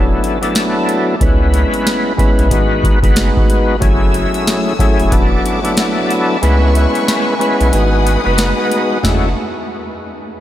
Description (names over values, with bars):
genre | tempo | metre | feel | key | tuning
hip hop, boom-bap hip-hop | 92 BPM | 4/4 | swing 61% on 16ths | F# minor | A4 = 438 Hz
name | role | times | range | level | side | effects
overdriven tonewheel organ | accompaniment | 0.0-9.3 s | F#3 to B4 | -15 LUFS | left 1 dB | chorus vibrato, slow rotary speaker, cassette tape
soft dub sub bass | bass | 0.0-9.3 s | E1 to C#2 | -15 LUFS | equal | none
booming analog drum machine | drums | 0.2-9.2 s | hi-hat, kick drum, snare drum, toms | -16 LUFS | equal | none
warm studio string section | sustained chords | 3.8-9.3 s | A3 to E6 | -24 LUFS | left 1 dB | none
room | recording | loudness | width
moderate cathedral reverb, RT60 6.4 s | dreamy mix soaked in reverb | -11 LUFS | side -12 dB against mid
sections
0.0-9.0 A section; 9.0-10.4 B section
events
kick muted 6.4-9.0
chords
0.0 E9sus4; 1.2 C#m7; 2.5 G#m7; 3.8 F#m9; 5.1 E9sus4; 6.4 C#m7; 7.7 G#m7; 9.0 F#m9